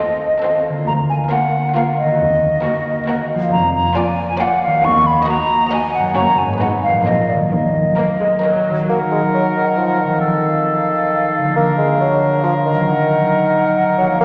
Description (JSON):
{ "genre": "cinematic, playful, whimsical film cue", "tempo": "136 BPM", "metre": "3/4", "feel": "straight", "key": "Eb minor", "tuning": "A4 = 440 Hz", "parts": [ { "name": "rich studio violin section", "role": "melody", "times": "0.0-8.8 s", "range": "A4 to Eb5", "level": "-31 LUFS", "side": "equal", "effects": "none" }, { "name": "hollow concert flute", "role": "second line", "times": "0.0-14.2 s", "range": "D5 to Db6", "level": "-20 LUFS", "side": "equal", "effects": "none" }, { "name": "warm studio violin section", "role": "second line", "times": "0.0-8.8 s", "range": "Bb3 to Gb4", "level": "-30 LUFS", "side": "equal", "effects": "none" }, { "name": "warm studio viola section", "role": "accompaniment", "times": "0.0-8.9 s", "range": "F3 to C4", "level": "-30 LUFS", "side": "equal", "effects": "none" }, { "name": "concert harp", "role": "arpeggios", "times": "0.0-14.2 s", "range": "Gb2 to Eb5", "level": "-23 LUFS", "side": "equal", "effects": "none" }, { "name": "rich studio double bass section", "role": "bass", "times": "0.9-7.9 s", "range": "F1 to Eb2", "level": "-30 LUFS", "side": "equal", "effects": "none" }, { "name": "warm studio cello section", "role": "bass", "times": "0.9-7.9 s", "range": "D2 to Eb3", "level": "-32 LUFS", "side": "equal", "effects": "none" }, { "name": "mellow clarinet", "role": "second line", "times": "8.9-14.2 s", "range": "D4 to F4", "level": "-28 LUFS", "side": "equal", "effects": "none" }, { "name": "warm oboe", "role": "second line", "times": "8.9-14.2 s", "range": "A4 to Bb4", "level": "-23 LUFS", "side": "equal", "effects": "none" }, { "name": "mellow bassoon", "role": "accompaniment", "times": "8.9-14.2 s", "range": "Eb3 to Bb3", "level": "-20 LUFS", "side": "equal", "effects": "none" } ], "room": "wet concert hall reverb, RT60 1.9 s", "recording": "none", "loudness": "-16 LUFS", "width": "mono", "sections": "0.0-8.9 A section; 8.9-14.2 A section", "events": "none", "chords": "0.0 F7/Eb; 0.9 Bb/D; 2.2 Ebm; 3.5 Bb7/F; 4.8 Ebm; 6.2 Gb; 6.6 Abm7; 7.1 Bb5; 7.5 Ebm; 10.2 F7/Eb; 11.6 Bb/D; 12.9 Ebm", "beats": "0.43 | 0.87 1.31 1.75 | 2.20 2.64 3.08 | 3.52 3.96 4.40 | 4.84 5.28 5.72 | 6.17 6.61 7.06 | 7.51 7.97 8.43 | 8.88 9.33 9.77 | 10.22 10.66 11.11 | 11.55 12.00 12.44 | 12.88 13.32 13.76 | 14.20" }